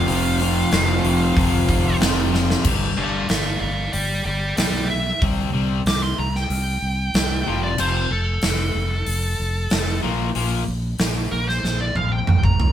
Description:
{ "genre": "hard rock", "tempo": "94 BPM", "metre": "4/4", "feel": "straight", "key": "unclear", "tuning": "A4 = 440 Hz", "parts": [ { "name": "high-gain lead guitar", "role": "melody", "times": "0.0-12.7 s", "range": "A4 to D6", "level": "-25 LUFS", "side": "right 1 dB", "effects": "distortion" }, { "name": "analog string pad", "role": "sustained chords", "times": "0.0-2.6 s", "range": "F4 to G5", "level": "-34 LUFS", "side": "left 1 dB", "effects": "none" }, { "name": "crunchy overdriven guitar", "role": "riff", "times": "0.0-10.6 s", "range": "F2 to C4", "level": "-24 LUFS", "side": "left 4 dB", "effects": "none" }, { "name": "overdriven semi-hollow guitar", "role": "riff", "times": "0.0-2.6 s", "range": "F2 to F3", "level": "-24 LUFS", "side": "right 5 dB", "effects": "none" }, { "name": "raw garage guitar", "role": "riff", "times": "0.0-2.3 s", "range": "F2 to F3", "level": "-26 LUFS", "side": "left 3 dB", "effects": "overdrive" }, { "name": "fingered electric bass", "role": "bass", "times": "0.0-12.7 s", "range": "F1 to C2", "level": "-24 LUFS", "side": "equal", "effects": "none" }, { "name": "huge arena drum kit", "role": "drums", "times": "0.1-12.7 s", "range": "crash cymbal, hi-hat, kick drum, snare drum, toms", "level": "-22 LUFS", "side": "right 1 dB", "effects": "none" } ], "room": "moderate small room reverb, RT60 0.5 s", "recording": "band playing live in one room", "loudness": "-18 LUFS", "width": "side -10 dB against mid", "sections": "0.0-2.7 A section; 2.7-12.7 B section", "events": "drum fill 2.3-2.7, 11.6-12.7; lead electric guitar solo 2.7-12.7", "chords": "0.0 F5; 2.7 G; 5.2 C5; 7.5 F; 10.0 Bb5" }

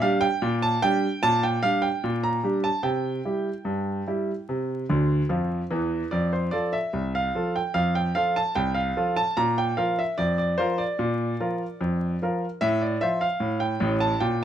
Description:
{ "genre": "ragtime piano", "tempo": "74 BPM", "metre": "2/4", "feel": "straight", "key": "F major", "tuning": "A4 = 440 Hz", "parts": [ { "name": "clear grand piano", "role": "solo", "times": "0.0-14.4 s", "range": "A1 to Bb5", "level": "-22 LUFS", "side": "right 1 dB", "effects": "none" } ], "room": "moderate club reverb, RT60 0.7 s", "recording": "vinyl crackle", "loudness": "-23 LUFS", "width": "side -10 dB against mid", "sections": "0.0-6.1 A section; 6.1-14.4 B section", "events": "grand piano fill 4.9-6.1", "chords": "0.0 Gm/Bb; 2.9 C; 6.1 F; 9.4 Bb; 12.6 F/A" }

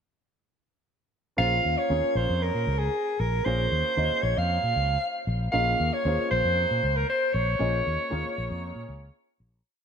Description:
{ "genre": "electric jazz fusion", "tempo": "116 BPM", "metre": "4/4", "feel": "straight", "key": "Bb minor", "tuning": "A4 = 440 Hz", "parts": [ { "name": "warm soprano saxophone", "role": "melody", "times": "1.4-9.1 s", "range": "Ab4 to F5", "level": "-26 LUFS", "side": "right 1 dB", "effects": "none" }, { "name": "dark grand piano", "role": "accompaniment", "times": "1.4-9.1 s", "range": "Bb3 to Eb5", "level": "-33 LUFS", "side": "right 1 dB", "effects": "lush chorus" }, { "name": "fretless electric bass", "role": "bass", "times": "1.4-9.6 s", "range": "Bb1 to Bb2", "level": "-28 LUFS", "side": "equal", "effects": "none" } ], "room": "moderate lush hall reverb, RT60 2.9 s", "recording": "bright 1980s-style digital production", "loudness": "-23 LUFS", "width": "side -7 dB against mid", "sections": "1.4-9.7 groove", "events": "fade-out 7.6-9.7", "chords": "1.4 Bbm9" }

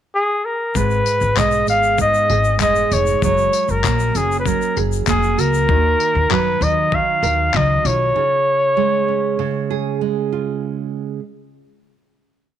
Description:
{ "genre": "acoustic pop", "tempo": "97 BPM", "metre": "4/4", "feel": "straight", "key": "Db mixolydian", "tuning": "A4 = 440 Hz", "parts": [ { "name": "clear flugelhorn", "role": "melody", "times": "0.1-10.0 s", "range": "Ab4 to F5", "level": "-17 LUFS", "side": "left 1 dB", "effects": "none" }, { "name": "nylon-string guitar", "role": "accompaniment", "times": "0.8-11.2 s", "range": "Ab2 to Bb4", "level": "-22 LUFS", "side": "right 10 dB", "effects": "none" }, { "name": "upright bass", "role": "bass", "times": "0.8-8.1 s", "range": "F1 to Gb2", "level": "-20 LUFS", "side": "left 2 dB", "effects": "none" }, { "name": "dusty soul sampler-style drum kit", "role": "drums", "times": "0.8-8.0 s", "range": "handclaps, kick drum, tambourine", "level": "-24 LUFS", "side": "left 7 dB", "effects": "none" }, { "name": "tube shaker", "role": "percussion", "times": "0.8-5.7 s", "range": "none", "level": "-35 LUFS", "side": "left 19 dB", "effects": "none" } ], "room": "light reverb, studio reverb", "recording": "1960s-style stereo with parts hard left and right", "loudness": "-15 LUFS", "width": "side -10 dB against mid", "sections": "0.0-0.7 pickup bar; 0.7-10.6 chorus", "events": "none", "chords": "0.0 N.C.; 0.7 Abm; 3.2 Gbadd9; 5.7 Ebmadd9; 8.2 Db" }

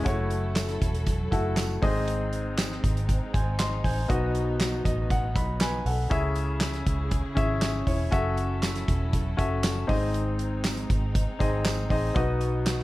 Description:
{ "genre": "piano-driven pop", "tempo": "119 BPM", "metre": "4/4", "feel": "straight", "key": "unclear", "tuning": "A4 = 439 Hz", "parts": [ { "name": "clear baby grand piano", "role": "accompaniment", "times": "0.0-12.8 s", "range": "G#2 to B#5", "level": "-29 LUFS", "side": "left 2 dB", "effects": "none" }, { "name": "warm studio string section", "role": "sustained chords", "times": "0.0-12.8 s", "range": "C#3 to A4", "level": "-38 LUFS", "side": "right 2 dB", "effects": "none" }, { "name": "vintage muted fingered electric bass", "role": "bass", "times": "0.0-12.8 s", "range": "E1 to C#2", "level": "-29 LUFS", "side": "equal", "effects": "none" }, { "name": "loose indie drum kit", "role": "drums", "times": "0.1-12.8 s", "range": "handclaps, hi-hat, kick drum, snare drum", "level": "-28 LUFS", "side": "equal", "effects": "none" }, { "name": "tambourine", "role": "percussion", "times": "0.6-12.8 s", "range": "none", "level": "-42 LUFS", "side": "right 8 dB", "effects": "none" } ], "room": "light reverb, small room ambience", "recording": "dark, warm production", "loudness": "-24 LUFS", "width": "side -17 dB against mid", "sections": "0.0-12.8 A section", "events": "grand piano fill 4.6-6.1, 12.7", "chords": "0.1 F#m7; 1.8 G#; 4.1 B; 6.1 C#m; 8.1 F#m7; 9.9 G#; 12.2 B" }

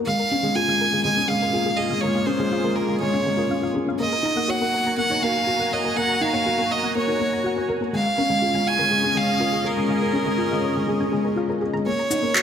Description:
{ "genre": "piano and strings electronica", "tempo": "122 BPM", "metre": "4/4", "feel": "straight", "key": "Bb minor", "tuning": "A4 = 440 Hz", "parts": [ { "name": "lush unison pad", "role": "sustained chords", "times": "0.0-12.4 s", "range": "Bb3 to Bb5", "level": "-29 LUFS", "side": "equal", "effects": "chorus, phaser" }, { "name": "soft round pluck", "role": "arpeggios", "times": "0.0-12.4 s", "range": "Ab4 to Bb5", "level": "-34 LUFS", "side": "left 1 dB", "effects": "chorus, tape echo" }, { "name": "felt-muted upright piano", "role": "riff", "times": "0.0-12.4 s", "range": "Ab3 to Bb4", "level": "-23 LUFS", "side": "left 2 dB", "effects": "none" }, { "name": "clear violin", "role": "melody", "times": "0.1-12.4 s", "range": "Bb4 to Ab5", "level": "-23 LUFS", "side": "right 2 dB", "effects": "none" }, { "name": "warm sub bass", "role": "bass", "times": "11.9-12.4 s", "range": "none", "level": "barely audible", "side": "none", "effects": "none" }, { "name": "electronic shaker and handclaps", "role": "drums", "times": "12.1-12.4 s", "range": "none", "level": "-18 LUFS", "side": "equal", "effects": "overdrive, studio reverb" } ], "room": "moderate lush hall reverb, RT60 1.9 s", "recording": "none", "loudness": "-19 LUFS", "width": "side -8 dB against mid", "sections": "0.0-11.9 A section", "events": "filter sweep on synth arpeggio sound 0.0-11.9", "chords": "0.1 Bbm7; 4.0 Gb6; 7.9 Db6; 11.9 Ebm7" }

